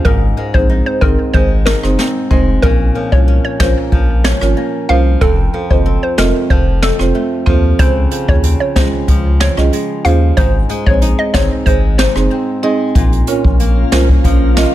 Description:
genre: dancehall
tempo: 93 BPM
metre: 4/4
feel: straight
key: Bb minor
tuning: A4 = 440 Hz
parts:
  - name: hollow square pluck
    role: melody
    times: 0.0-12.1 s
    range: A4 to F5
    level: -19 LUFS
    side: left 1 dB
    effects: chorus, digital delay
  - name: flamenco guitar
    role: arpeggios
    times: 0.0-14.7 s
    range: F2 to F4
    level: -22 LUFS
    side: left 4 dB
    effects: digital delay
  - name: saturated sub bass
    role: bass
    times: 0.1-14.7 s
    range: F1 to Eb2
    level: -14 LUFS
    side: equal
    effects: none
  - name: jazz brush drum kit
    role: drums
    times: 0.1-14.7 s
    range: hi-hat, kick drum, rim click, snare drum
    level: -14 LUFS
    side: equal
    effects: none
  - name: marimba with medium mallets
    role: accompaniment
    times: 0.4-14.7 s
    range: C4 to Eb5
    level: -18 LUFS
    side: right 4 dB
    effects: sidechain pumping
  - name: glassy FM pad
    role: sustained chords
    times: 13.6-14.7 s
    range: Db4 to F5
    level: -21 LUFS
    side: left 2 dB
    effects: ensemble chorus, built-in reverb, sidechain pumping
room: studio reverb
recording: none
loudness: -10 LUFS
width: side -14 dB against mid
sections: 0.0-13.0 A section; 13.0-14.7 B section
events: break 12.3-13.0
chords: 0.1 Ab; 2.6 Bbm; 5.2 F; 7.8 Dbmaj7; 10.4 Ab; 13.0 Bbm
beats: | 0.05 0.70 1.34 1.99 | 2.63 3.28 3.92 4.57 | 5.21 5.86 6.50 7.15 | 7.79 8.44 9.08 9.73 | 10.37 11.02 11.66 12.31 | 12.95 13.60 14.24

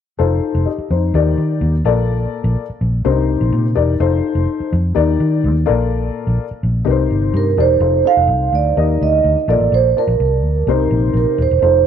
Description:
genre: uptempo 1960s-style soul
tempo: 126 BPM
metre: 4/4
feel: straight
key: F mixolydian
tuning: A4 = 440 Hz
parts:
  - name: dark upright piano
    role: accompaniment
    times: 0.2-11.8 s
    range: Bb2 to A5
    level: -19 LUFS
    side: left 8 dB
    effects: none
  - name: vintage muted fingered electric bass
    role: bass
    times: 0.2-11.8 s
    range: Eb1 to Eb3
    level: -16 LUFS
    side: equal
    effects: none
  - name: vibraphone with soft mallets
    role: melody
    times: 7.4-11.9 s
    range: Bb4 to F5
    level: -15 LUFS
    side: right 10 dB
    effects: none
room: light reverb, small room ambience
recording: 1960s-style stereo with parts hard left and right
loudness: -14 LUFS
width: side -8 dB against mid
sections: 0.2-7.8 A section; 7.8-11.9 B section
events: none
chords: 0.2 F7; 1.1 Ebmaj7; 1.9 Bbmaj7; 3.0 Cm7; 4.0 F7; 5.0 Ebmaj7; 5.7 Bbmaj7; 6.9 Cm7; 7.8 F7; 8.8 Ebmaj7; 9.5 Bbmaj7; 10.7 Cm7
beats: | 0.19 0.66 1.14 1.62 | 2.09 2.57 3.05 3.52 | 4.00 4.48 4.96 5.43 | 5.91 6.39 6.86 7.34 | 7.82 8.29 8.77 9.25 | 9.73 10.20 10.68 11.16 | 11.63

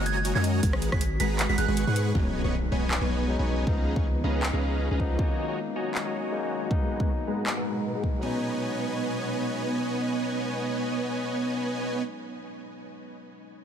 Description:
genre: future bass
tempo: 158 BPM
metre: 4/4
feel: swing 54% on 16ths, half-time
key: B lydian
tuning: A4 = 440 Hz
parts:
  - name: soft synth bell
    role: melody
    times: 0.0-2.1 s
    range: F#6 to B6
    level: -34 LUFS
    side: right 5 dB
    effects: chorus, sidechain pumping, dub echo
  - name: ethereal airy pad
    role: sustained chords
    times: 0.0-12.0 s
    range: A#2 to G#4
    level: -37 LUFS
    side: left 2 dB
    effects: ensemble chorus, built-in reverb, sidechain pumping
  - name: dense compressed supersaw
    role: riff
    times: 0.0-12.0 s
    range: G#3 to C#6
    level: -30 LUFS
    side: right 1 dB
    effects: sidechain pumping, low-pass filter, dub echo
  - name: long sustained 808-style bass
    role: bass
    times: 0.0-5.2 s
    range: F#1 to G#2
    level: -27 LUFS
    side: equal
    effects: sidechain pumping
  - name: pop drum kit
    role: drums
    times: 0.1-7.5 s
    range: handclaps, hi-hat, rim click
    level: -33 LUFS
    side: equal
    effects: none
  - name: electronic kick drum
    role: drums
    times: 0.6-8.1 s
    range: none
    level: -27 LUFS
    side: equal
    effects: none
  - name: barky tine electric piano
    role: accompaniment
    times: 2.1-13.6 s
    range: E#3 to D#4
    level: -35 LUFS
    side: left 4 dB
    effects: sidechain pumping, dub echo
  - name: impact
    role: sound effects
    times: 2.2-3.7 s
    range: none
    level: -37 LUFS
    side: equal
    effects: none
room: light reverb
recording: none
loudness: -25 LUFS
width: side -8 dB against mid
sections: 0.0-2.1 A section; 2.1-8.2 B section; 8.2-11.3 C section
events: drop 0.0-2.1; kick drops out 1.8-2.1; impact 2.1-3.7; filter sweep on supersaw synth 2.1-8.2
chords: 0.0 F#6; 0.6 G#m9; 2.1 B6; 3.7 C#13; 5.2 F#6; 6.7 G#m9; 8.2 B6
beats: 0.25 | 0.63 1.01 1.39 1.77 | 2.15 2.53 2.91 3.29 | 3.67 4.05 4.43 4.81 | 5.19 5.57 5.95 6.33 | 6.71 7.09 7.47 7.85 | 8.23 8.61 8.98 9.37 | 9.74 10.12 10.50 10.88

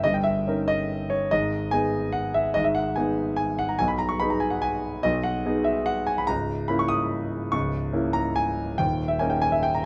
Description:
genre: classical, piano waltz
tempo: 143 BPM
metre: 3/4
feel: rubato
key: G# minor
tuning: A4 = 440 Hz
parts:
  - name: warm concert grand piano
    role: solo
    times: 0.0-9.9 s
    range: C#1 to D#6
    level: -25 LUFS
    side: equal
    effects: none
room: light reverb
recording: none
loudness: -25 LUFS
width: mono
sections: 0.0-9.9 A section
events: none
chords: 0.0 D#7/G; 1.3 G#m; 3.8 G#m/B; 6.3 A#dim/C#; 8.8 D#5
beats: | 0.04 0.46 0.88 | 1.30 1.71 2.13 | 2.55 2.96 3.38 | 3.79 4.20 4.62 | 5.04 5.45 5.87 | 6.28 6.69 7.12 | 7.53 7.94 8.36 | 8.78 9.20 9.63

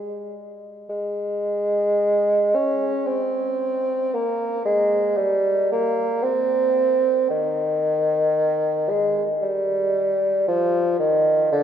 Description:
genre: classical, baroque-style fantasia for unaccompanied bassoon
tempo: 57 BPM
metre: 3/4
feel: rubato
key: Ab major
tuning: A4 = 436 Hz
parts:
  - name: dark bassoon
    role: solo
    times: 0.0-11.6 s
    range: D3 to Db4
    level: -19 LUFS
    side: equal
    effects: none
room: wet cathedral reverb, RT60 4.5 s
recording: recorded in a church or concert hall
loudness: -19 LUFS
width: side -9 dB against mid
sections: 0.9-11.6 A section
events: none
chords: none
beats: | 0.91 2.00 3.07 | 4.13 5.17 6.23 | 7.31 8.37 9.43 | 10.49 11.53

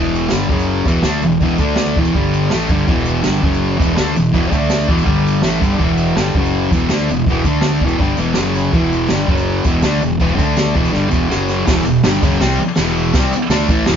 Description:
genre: garage rock duo or trio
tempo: 164 BPM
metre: 4/4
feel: straight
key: E minor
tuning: A4 = 441 Hz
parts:
  - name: thick fuzz guitar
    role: riff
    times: 0.0-14.0 s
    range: E2 to D4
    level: -15 LUFS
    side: equal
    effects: distortion
  - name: fuzz fingered electric bass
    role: bass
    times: 0.0-14.0 s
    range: E1 to D2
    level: -21 LUFS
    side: equal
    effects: overdrive
  - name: tambourine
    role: percussion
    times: 0.2-13.8 s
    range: none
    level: -36 LUFS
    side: right 6 dB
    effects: none
  - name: jazz brush drum kit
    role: drums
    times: 0.3-14.0 s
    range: crash cymbal, hi-hat, kick drum, ride cymbal, snare drum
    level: -18 LUFS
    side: right 1 dB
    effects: none
room: light reverb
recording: band playing live in one room, nothing above 7.5 kHz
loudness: -13 LUFS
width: side -8 dB against mid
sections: 0.0-11.7 A section; 11.7-14.0 B section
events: drum fill 10.9-11.7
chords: 0.0 Em; 0.5 F#5; 0.9 E5; 1.6 D5; 2.0 E5; 2.2 G5; 2.5 Em; 3.4 F#5; 3.8 E5; 4.5 D5; 4.9 E5; 5.1 G5; 5.4 Em; 6.4 F#5; 6.7 E5; 7.5 D5; 7.8 Em; 8.4 F#5; 8.7 Em; 9.3 F#5; 9.6 E5; 10.4 D5; 10.7 Em; 11.3 F#5; 11.7 Em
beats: 0.32 0.69 1.05 | 1.42 1.78 2.15 2.52 | 2.88 3.25 3.62 3.98 | 4.35 4.71 5.08 5.44 | 5.81 6.17 6.54 6.90 | 7.27 7.63 8.00 8.36 | 8.73 9.10 9.46 9.83 | 10.20 10.56 10.93 11.30 | 11.66 12.03 12.40 12.77 | 13.13 13.50 13.87

